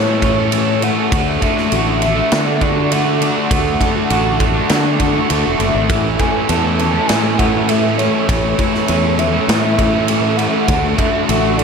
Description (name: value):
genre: rock, shoegaze and dream pop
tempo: 100 BPM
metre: 4/4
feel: straight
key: A major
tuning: A4 = 439 Hz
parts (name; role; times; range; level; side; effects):
- mellow horn-like synth lead; melody; 0.0-11.6 s; C#5 to A5; -22 LUFS; equal; chorus, analog delay
- deep dark ambient pad; sustained chords; 0.0-11.6 s; A4 to D6; -26 LUFS; right 5 dB; chorus, built-in reverb
- electric guitar through a small old amp; arpeggios; 0.0-11.6 s; E3 to F#4; -24 LUFS; right 2 dB; analog chorus, analog delay
- cranked stack guitar; riff; 0.0-11.6 s; A2 to A4; -20 LUFS; right 13 dB; overdrive, reverse reverb
- thick fuzz guitar; riff; 0.0-11.6 s; A2 to D4; -21 LUFS; left 15 dB; distortion, lush chorus
- fingered electric bass; bass; 0.0-11.6 s; E1 to D3; -19 LUFS; equal; none
- huge arena drum kit; drums; 0.2-11.6 s; kick drum, ride cymbal, snare drum; -20 LUFS; equal; none
room: light reverb, small room reverb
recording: none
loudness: -13 LUFS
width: side -6 dB against mid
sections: 0.0-11.6 A section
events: none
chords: 0.0 A; 1.1 D; 5.9 A; 10.7 D